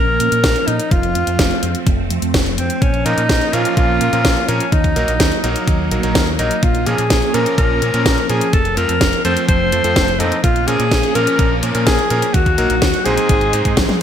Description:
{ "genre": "italo disco", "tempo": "126 BPM", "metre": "4/4", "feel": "straight", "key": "Bb minor", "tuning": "A4 = 440 Hz", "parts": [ { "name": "breathy alto saxophone", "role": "melody", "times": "0.0-14.0 s", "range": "C4 to C5", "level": "-18 LUFS", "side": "left 1 dB", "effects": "vintage 12-bit sampler grit, ping-pong delay" }, { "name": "phased string machine", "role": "sustained chords", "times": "0.0-14.0 s", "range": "F3 to Eb4", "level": "-23 LUFS", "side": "equal", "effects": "ensemble chorus, phaser" }, { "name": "fingered electric bass with an envelope filter", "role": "bass", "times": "0.0-13.9 s", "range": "F1 to Bb2", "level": "-21 LUFS", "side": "equal", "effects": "tube saturation" }, { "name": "house drum kit", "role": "drums", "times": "0.2-14.0 s", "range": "hi-hat, snare drum, toms", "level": "-20 LUFS", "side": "equal", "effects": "gated reverb" }, { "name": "electronic kick drum", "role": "drums", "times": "0.4-13.9 s", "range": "none", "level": "-18 LUFS", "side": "equal", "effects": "none" }, { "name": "bright electric grand piano", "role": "stabs", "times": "3.1-14.0 s", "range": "Ab2 to C5", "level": "-21 LUFS", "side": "right 1 dB", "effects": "vintage 12-bit sampler grit, digital delay" } ], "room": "moderate plate reverb, RT60 1.5 s", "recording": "bright 1980s-style digital production", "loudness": "-13 LUFS", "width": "side -9 dB against mid", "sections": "0.0-14.0 A section", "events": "drum fill 13.8", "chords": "0.0 Bbm; 0.9 F; 2.8 Bbm; 4.7 Ebm; 6.6 Bbm; 8.5 F; 10.4 Bbm; 12.3 Ebm; 13.3 Ab" }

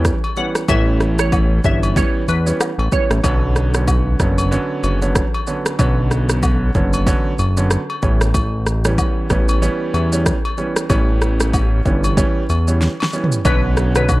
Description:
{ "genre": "afrobeats", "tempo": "94 BPM", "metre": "4/4", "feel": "swing 58% on 16ths", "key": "unclear", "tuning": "A4 = 440 Hz", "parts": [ { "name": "clear grand piano", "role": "accompaniment", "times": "0.0-14.2 s", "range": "D3 to C#4", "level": "-22 LUFS", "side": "right 2 dB", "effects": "none" }, { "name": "fat analog bass", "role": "bass", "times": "0.0-14.2 s", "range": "F#1 to E2", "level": "-17 LUFS", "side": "equal", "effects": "none" }, { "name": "deep house drum kit", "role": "drums", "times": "0.0-14.2 s", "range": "kick drum, rim click, shaker, snare drum, toms", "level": "-19 LUFS", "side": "equal", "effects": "overdrive" }, { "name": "agogo bells and woodblock", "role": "percussion", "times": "0.2-14.2 s", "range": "none", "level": "-28 LUFS", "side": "left 3 dB", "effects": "none" }, { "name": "glassy wavetable pluck", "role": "melody", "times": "0.4-3.1, 13.5-14.2 s", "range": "B4 to F#5", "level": "-24 LUFS", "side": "left 1 dB", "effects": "chorus, analog delay" }, { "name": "warm analog pad", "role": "sustained chords", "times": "13.4-14.2 s", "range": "D3 to F#4", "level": "-29 LUFS", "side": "right 2 dB", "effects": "chorus" } ], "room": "digital ambience", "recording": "dark, warm production", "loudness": "-15 LUFS", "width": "side -19 dB against mid", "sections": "0.0-13.5 A section", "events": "drum fill 12.8-13.5", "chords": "0.0 A7; 3.2 Bmadd9; 8.0 A7; 13.5 Bmadd9" }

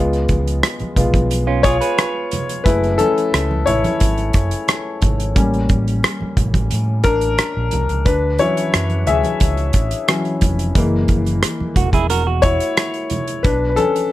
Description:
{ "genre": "lush 1970s-style soul", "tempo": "89 BPM", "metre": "4/4", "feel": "straight", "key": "unclear", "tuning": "A4 = 439 Hz", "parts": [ { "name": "clear concert grand piano", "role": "accompaniment", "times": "0.0-14.1 s", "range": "E3 to E5", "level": "-19 LUFS", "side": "left 3 dB", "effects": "none" }, { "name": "overdriven fingered electric bass", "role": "bass", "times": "0.0-13.7 s", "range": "E1 to A2", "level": "-20 LUFS", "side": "equal", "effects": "none" }, { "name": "damped 70s drum kit", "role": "drums", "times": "0.1-14.1 s", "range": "hi-hat, kick drum, rim click", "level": "-18 LUFS", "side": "right 1 dB", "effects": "none" }, { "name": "congas", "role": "percussion", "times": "0.3-13.9 s", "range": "none", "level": "-28 LUFS", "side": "right 2 dB", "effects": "none" }, { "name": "semi-hollow electric guitar", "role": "riff", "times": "1.5-2.6, 11.8-13.2 s", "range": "C#4 to B4", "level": "-22 LUFS", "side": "right 7 dB", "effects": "none" } ], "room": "light reverb", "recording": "none", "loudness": "-15 LUFS", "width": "side -15 dB against mid", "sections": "0.0-14.1 A section", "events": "grand piano solo 0.0-14.1", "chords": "0.0 C#7; 2.7 F#m9; 5.4 A7b9; 8.1 Dmaj9; 10.8 F#7; 13.4 Bm9" }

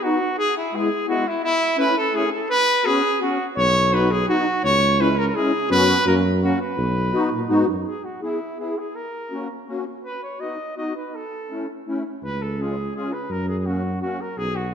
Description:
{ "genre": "alpine folk, alpine dance band", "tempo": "167 BPM", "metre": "3/4", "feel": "straight", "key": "B major, E major from 7.9 s", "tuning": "A4 = 440 Hz", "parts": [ { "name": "clear trumpet", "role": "melody", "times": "0.0-14.7 s", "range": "E4 to D#5", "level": "-22 LUFS", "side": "equal", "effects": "none" }, { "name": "musette accordion", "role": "accompaniment", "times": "0.0-14.2 s", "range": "G#3 to G#4", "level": "-24 LUFS", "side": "left 2 dB", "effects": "none" }, { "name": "mellow tuba", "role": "bass", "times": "3.6-7.8, 12.2-14.7 s", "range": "B1 to A#2", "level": "-24 LUFS", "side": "right 1 dB", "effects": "none" } ], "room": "wet concert hall reverb, RT60 1.7 s", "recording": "none", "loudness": "-19 LUFS", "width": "side -7 dB against mid", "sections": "0.0-7.9 A section; 7.9-14.7 B section", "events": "none", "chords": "0.4 E; 1.4 A; 2.5 F#sus4; 3.6 B; 4.6 C#m; 5.7 F#sus4; 6.1 F#; 6.8 B; 7.9 E; 8.9 F#; 10.0 B; 11.1 A; 12.2 C#; 13.3 F#" }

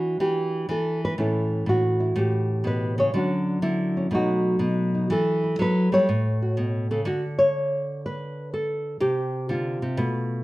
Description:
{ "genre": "solo jazz", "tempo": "123 BPM", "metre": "4/4", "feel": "swing 68% on 8ths", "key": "unclear", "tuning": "A4 = 437 Hz", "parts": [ { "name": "nylon-string guitar", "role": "solo", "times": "0.0-10.4 s", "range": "A2 to C#5", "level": "-22 LUFS", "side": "equal", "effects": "none" } ], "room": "moderate large studio reverb, RT60 0.8 s", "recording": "none", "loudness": "-22 LUFS", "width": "side -18 dB against mid", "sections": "0.0-7.0 A section; 7.0-10.4 B section", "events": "none", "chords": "0.0 Em9; 1.2 A7; 3.1 Dmaj7; 4.1 B7; 5.1 Em; 6.1 A69; 7.0 N.C.; 9.0 C5" }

